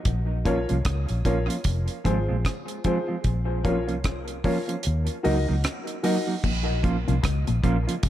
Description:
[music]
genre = dub reggae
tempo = 75 BPM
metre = 4/4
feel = swing 59% on 16ths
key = Bb minor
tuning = A4 = 441 Hz
[part]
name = vintage muted fingered electric bass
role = bass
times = 0.1-8.1 s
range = F1 to Eb2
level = -25 LUFS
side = equal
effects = none
[part]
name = deep reggae drum kit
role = drums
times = 0.1-8.1 s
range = crash cymbal, hi-hat, kick drum, rim click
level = -28 LUFS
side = equal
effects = none
[part]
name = mellow electric guitar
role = accompaniment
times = 0.5-7.9 s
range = F3 to Gb4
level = -29 LUFS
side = right 3 dB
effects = spring reverb, tape echo
[part]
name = dark upright piano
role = stabs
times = 0.5-6.2 s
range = F4 to Eb5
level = -30 LUFS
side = left 3 dB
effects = tape echo
[part]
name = electric guitar with an envelope filter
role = riff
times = 6.4-8.1 s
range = F2 to Db3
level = -30 LUFS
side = left 7 dB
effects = tape echo
[sound]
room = light reverb, studio reverb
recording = none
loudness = -22 LUFS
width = side -12 dB against mid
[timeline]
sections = 0.0-6.4 A section; 6.4-8.1 B section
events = kick muted 4.8-6.4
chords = 0.1 Bbm; 1.7 Fm; 3.2 Bbm; 4.8 Ebm; 6.4 Bbm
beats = | 0.05 0.85 1.65 2.45 | 3.25 4.05 4.84 5.64 | 6.44 7.24 8.04

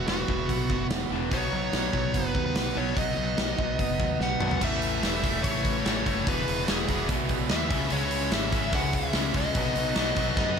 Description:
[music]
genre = classic rock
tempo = 146 BPM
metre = 4/4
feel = straight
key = E major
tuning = A4 = 441 Hz
[part]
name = dark smooth lead guitar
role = melody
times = 0.0-10.6 s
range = F#4 to F#5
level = -31 LUFS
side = left 3 dB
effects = overdrive, slapback echo
[part]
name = crunchy overdriven guitar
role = riff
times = 0.0-10.6 s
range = E2 to C#4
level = -33 LUFS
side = left 11 dB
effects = none
[part]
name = overdriven electric guitar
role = riff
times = 0.0-10.6 s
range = E2 to F#4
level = -31 LUFS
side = right 12 dB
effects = spring reverb, slapback echo
[part]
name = fuzz fingered electric bass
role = bass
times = 0.0-10.6 s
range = E1 to F#2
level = -32 LUFS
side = equal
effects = overdrive
[part]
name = big rock drum kit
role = drums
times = 0.1-10.6 s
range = crash cymbal, hi-hat, kick drum, snare drum, toms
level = -29 LUFS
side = equal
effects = none
[part]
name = bright tonewheel organ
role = sustained chords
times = 4.3-10.6 s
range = A3 to D5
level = -42 LUFS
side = equal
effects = none
[sound]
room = moderate lush hall reverb, RT60 1.6 s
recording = big arena sound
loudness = -24 LUFS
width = side -6 dB against mid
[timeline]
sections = 0.0-4.6 A section; 4.6-10.6 B section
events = drum fill 4.2-4.6, 10.4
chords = 0.0 Esus2; 1.3 B; 4.6 Aadd9; 6.3 Eadd9; 7.7 C#m7; 9.6 B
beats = 0.08 0.49 0.90 | 1.32 1.73 2.14 2.56 | 2.97 3.38 3.79 4.21 | 4.62 5.03 5.44 5.85 | 6.27 6.68 7.09 7.50 | 7.91 8.32 8.73 9.14 | 9.55 9.96 10.37

